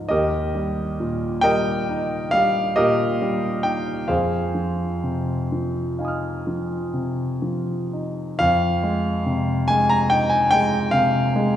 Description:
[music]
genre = classical, impressionist solo piano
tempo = 40-51 BPM (dotted quarters)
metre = 9/8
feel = rubato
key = F minor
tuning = A4 = 439 Hz
[part]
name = warm grand piano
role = solo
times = 0.0-11.6 s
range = Eb2 to F6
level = -19 LUFS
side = equal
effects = none
[sound]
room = wet concert hall reverb, RT60 1.9 s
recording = recorded in a church or concert hall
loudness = -19 LUFS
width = side -10 dB against mid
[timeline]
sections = 0.0-8.4 A section; 8.4-11.6 A section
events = none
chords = 0.1 Eb; 4.1 Fm7

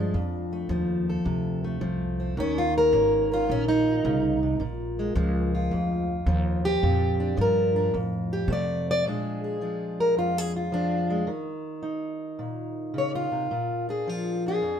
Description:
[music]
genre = acoustic country blues, solo or duo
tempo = 108 BPM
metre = 4/4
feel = swing 68% on 8ths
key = Bb mixolydian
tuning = A4 = 440 Hz
[part]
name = fingerpicked plugged-in steel-string acoustic guitar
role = melody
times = 0.0-14.8 s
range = F2 to D5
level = -24 LUFS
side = equal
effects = none
[part]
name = upright bass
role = bass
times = 0.0-9.0 s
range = Ab1 to C3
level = -28 LUFS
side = equal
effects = none
[sound]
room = moderate studio reverb, RT60 0.9 s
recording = band playing live in one room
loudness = -24 LUFS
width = side -8 dB against mid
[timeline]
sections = 0.0-9.0 A section; 9.0-14.8 B section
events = steel-string acoustic guitar solo 0.0-9.0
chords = 0.1 F7; 2.4 Eb5; 4.6 Bb7; 7.9 F; 9.0 Bb7; 11.3 Eb5; 13.5 Bb7

